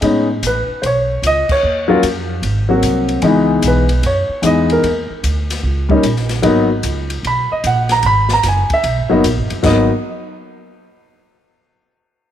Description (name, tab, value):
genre	jazz piano trio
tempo	150 BPM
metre	4/4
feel	swing 65% on 8ths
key	G# minor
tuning	A4 = 440 Hz
part	warm grand piano	melody	0.0-9.9 s	E3 to B5	-14 LUFS	left 1 dB	none
part	upright bass	bass	0.0-9.9 s	F#1 to A2	-18 LUFS	right 1 dB	none
part	open jazz drum kit	drums	0.0-9.8 s	crash cymbal, hi-hat, kick drum, ride cymbal, snare drum	-24 LUFS	left 2 dB	none
room	light reverb, small room ambience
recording	1960s-style stereo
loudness	-13 LUFS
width	side -10 dB against mid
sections	0.0-9.6 A section; 9.6-11.2 B section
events	band accent 1.4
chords	0.0 Aadd9(#11); 1.6 D#7sus2; 2.4 G#7; 3.2 C#m9; 4.8 D#7(no3); 6.4 G#m9; 9.6 G#5